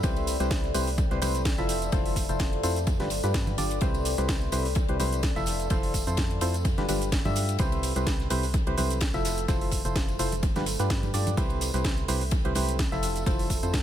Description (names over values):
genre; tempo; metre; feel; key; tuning
piano house; 127 BPM; 4/4; swing 55% on 16ths; unclear; A4 = 440 Hz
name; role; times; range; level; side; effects
percussive organ stab; riff; 0.0-13.8 s; C3 to E5; -30 LUFS; equal; chorus, sidechain pumping, analog delay
organ-like FM bass; bass; 0.0-13.8 s; F1 to G2; -30 LUFS; equal; sidechain pumping
electronic kick drum; drums; 0.0-13.8 s; none; -28 LUFS; equal; overdrive
house drum kit; drums; 0.0-13.8 s; hi-hat, shaker, snare drum; -34 LUFS; right 2 dB; analog delay
modern studio drum kit; drums; 0.0-13.8 s; ride cymbal, snare drum; -42 LUFS; left 4 dB; sidechain pumping on cymbals, high-pass filter on cymbals, high-pass filter on snare, high-pass filter on room
tambourine and congas; percussion; 0.0-13.8 s; none; -39 LUFS; right 1 dB; analog delay
deep dark ambient pad; texture; 0.0-13.8 s; A4 to B5; -36 LUFS; left 2 dB; chorus, built-in reverb, sidechain pumping
room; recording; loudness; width
little or no reverb; echo-heavy mix; -24 LUFS; side -11 dB against mid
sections
0.0-13.8 A section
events
none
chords
0.0 Fmaj7; 2.9 G7; 3.8 Fmaj7; 6.7 G7; 7.6 Fmaj7; 10.4 G7; 11.4 Fmaj7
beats
| 0.04 0.51 0.98 1.45 | 1.93 2.40 2.87 3.34 | 3.81 4.29 4.76 5.23 | 5.71 6.18 6.65 7.12 | 7.59 8.07 8.54 9.01 | 9.48 9.96 10.43 10.90 | 11.37 11.85 12.32 12.79 | 13.26 13.74